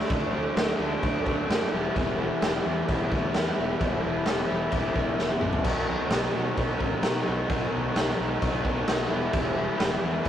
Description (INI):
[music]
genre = quiet-loud alternative rock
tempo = 130 BPM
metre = 4/4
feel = straight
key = E minor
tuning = A4 = 440 Hz
[part]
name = overdriven electric guitar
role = riff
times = 0.0-10.3 s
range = B2 to E4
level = -28 LUFS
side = equal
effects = none
[part]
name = fuzz fingered electric bass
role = bass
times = 0.0-10.3 s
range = E1 to B2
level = -34 LUFS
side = equal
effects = overdrive
[part]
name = raw garage drum kit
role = drums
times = 0.1-10.3 s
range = crash cymbal, kick drum, snare drum, toms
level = -27 LUFS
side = equal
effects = none
[sound]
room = moderate small room reverb, RT60 0.6 s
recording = rough rehearsal-room recording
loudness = -24 LUFS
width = side -10 dB against mid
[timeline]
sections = 0.0-10.3 A section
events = drum fill 5.2-5.7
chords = 0.0 D; 1.7 Em; 5.7 B; 9.1 Em